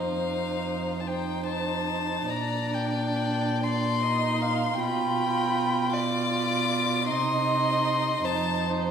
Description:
classical, slow romantic movement for string quartet; 44-54 BPM (dotted quarters); 6/8; rubato; Bb major; A4 = 440 Hz
rich violin; melody; 0.0-8.6 s; F5 to D6; -29 LUFS; left 5 dB
warm violin; second line; 0.0-8.9 s; C5 to G5; -31 LUFS; equal
dark viola; accompaniment; 0.0-8.9 s; D4 to F4; -31 LUFS; right 3 dB
rich cello; bass; 0.0-8.9 s; F2 to C3; -30 LUFS; right 3 dB
wet recital hall reverb, RT60 1.5 s; recorded in a church or concert hall; -24 LUFS; side -7 dB against mid
0.0-8.9 A section
0.0 F7; 2.3 Bb; 4.8 G7/B; 7.1 Cm; 8.3 F5

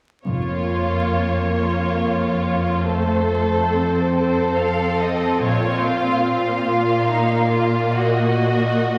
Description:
classical, slow romantic movement for string orchestra; 47 BPM (dotted quarters); 6/8; uneven beats, rubato; Bb minor; A4 = 440 Hz
warm symphonic violin section; melody; 0.3-9.0 s; C5 to F5; -28 LUFS; equal
warm symphonic violin section; second line; 0.3-9.0 s; Eb4 to A4; -25 LUFS; equal
warm studio viola section; accompaniment; 0.3-9.0 s; A3 to C4; -26 LUFS; equal
rich symphonic cello section; bass; 0.3-9.0 s; F2 to Bb2; -25 LUFS; equal
rich symphonic double bass section; bass; 0.3-1.1, 5.4-6.2 s; F1 to Bb1; -29 LUFS; equal
wet scoring stage reverb, RT60 2.2 s; vinyl crackle; -20 LUFS; mono
0.3-9.0 A section
0.3 Bbm/F; 2.9 F; 5.4 Bb5; 8.0 Ebm/Bb

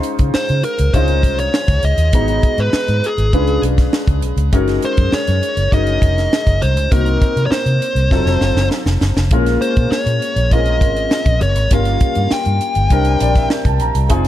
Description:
polished 1980s jazz-funk pop; 100 BPM; 4/4; straight; Db major; A4 = 445 Hz
warm concert grand piano; accompaniment; 0.0-14.3 s; Gb3 to Bb5; -20 LUFS; left 2 dB; lush chorus
tight funk drum kit; drums; 0.0-14.3 s; hi-hat, kick drum, snare drum; -17 LUFS; equal
vintage muted fingered electric bass; bass; 0.2-14.3 s; F1 to Db3; -16 LUFS; equal
fuzz lead guitar; melody; 0.3-13.5 s; Ab4 to G5; -20 LUFS; equal; distortion, ping-pong delay
light reverb, small room ambience; dark, warm production; -13 LUFS; side -13 dB against mid
0.0-14.3 A section
drum fill 8.1-9.3; grand piano fill 12.9-14.1
0.0 Dbmaj9; 2.1 Abm7; 3.3 Db7b9; 4.5 Gb6; 6.9 Cm7b5; 8.1 F7b9; 9.3 Bbm9; 11.7 Gm7b5; 12.9 C7

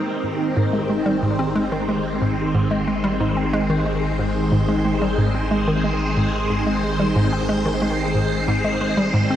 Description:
ambient, sequencer-driven space music; 91 BPM; 4/4; straight; Ab major; A4 = 441 Hz
phased string machine; sustained chords; 0.0-9.4 s; Eb3 to C5; -21 LUFS; equal; ensemble chorus, phaser
round analog bass; bass; 0.0-9.4 s; Ab1; -29 LUFS; equal
hollow square pluck; riff; 0.2-9.4 s; Ab2 to C4; -22 LUFS; equal; chorus, tape echo
wet huge ambient reverb, RT60 7.6 s; -18 LUFS; side -11 dB against mid
0.0-9.4 A section
0.0 Abmaj7

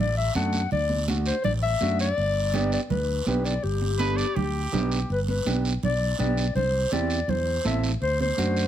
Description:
latin, cumbia; 164 BPM; 4/4; straight; G major; A4 = 442 Hz
breathy clarinet; melody; 0.0-8.7 s; G4 to F#5; -27 LUFS; left 4 dB; plate reverb
fretless electric bass; bass; 0.0-8.7 s; G1 to F#2; -27 LUFS; equal
mellow electric guitar; accompaniment; 0.3-8.6 s; A3 to A4; -29 LUFS; right 4 dB
guiro; percussion; 0.3-8.7 s; -36 LUFS; right 4 dB
congas; percussion; 0.4-8.6 s; -32 LUFS; right 3 dB
clear trumpet; second line; 4.0-5.1 s; G4 to D5; -31 LUFS; right 3 dB
light reverb; -22 LUFS; side -11 dB against mid
0.0-5.1 A section; 5.1-8.7 B section
0.0 D; 2.2 G; 6.6 C; 8.0 D7

